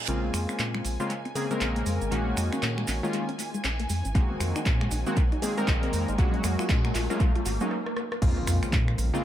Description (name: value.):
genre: deep house.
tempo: 118 BPM.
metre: 4/4.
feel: swing 60% on 16ths.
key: Bb minor.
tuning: A4 = 439 Hz.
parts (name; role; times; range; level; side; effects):
warm analog keys; stabs; 0.0-9.2 s; Db3 to Bb4; -30 LUFS; left 1 dB; chorus, sidechain pumping, low-pass filter, analog delay.
reverse cymbal, riser and impact; sound effects; 0.0-9.2 s; none; -37 LUFS; right 1 dB; none.
warm studio violin section; texture; 0.0-7.7 s; Ab5; -42 LUFS; equal; none.
soft round pluck; arpeggios; 0.1-7.6 s; Ab3 to Gb4; -36 LUFS; left 3 dB; chorus, sidechain pumping, analog delay.
round analog bass; bass; 0.1-9.1 s; Ab1 to Bb2; -29 LUFS; equal; none.
punchy analog drum machine; drums; 0.1-9.1 s; crash cymbal, finger snaps, handclaps, hi-hat, rim click; -34 LUFS; equal; tape echo.
cabasa; percussion; 0.1-9.2 s; none; -40 LUFS; right 8 dB; none.
electronic kick drum; drums; 4.2-8.9 s; none; -24 LUFS; equal; none.
room: light reverb.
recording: echo-heavy mix.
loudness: -24 LUFS.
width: side -12 dB against mid.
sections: 0.1-8.2 A section; 8.2-9.2 B section.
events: build-up 0.1-8.2; riser 0.1-7.7; filter sweep on synth arpeggio sound 0.1-8.2; drum fill 7.7-8.2; stop 7.7-8.2; drop 8.2-9.2; impact 8.2-9.2.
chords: 0.1 Bbm9; 2.1 Eb7sus4/Bb; 4.2 Ab7/Bb; 6.2 Gbmaj7/Bb; 8.2 Bbm9.